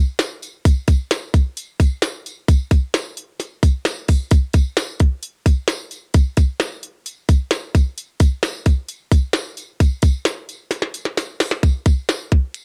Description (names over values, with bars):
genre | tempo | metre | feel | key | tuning
indie pop | 131 BPM | 4/4 | straight | none | none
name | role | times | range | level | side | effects
glitchy drum kit | drums | 0.2-12.6 s | hi-hat, kick drum, snare drum | -18 LUFS | equal | none
tambourine | percussion | 0.2-12.6 s | none | -38 LUFS | equal | none
room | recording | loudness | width
little or no reverb | dark, warm production | -19 LUFS | mono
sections
0.0-11.6 A section; 11.6-12.6 B section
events
drum fill 10.7-11.6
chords
none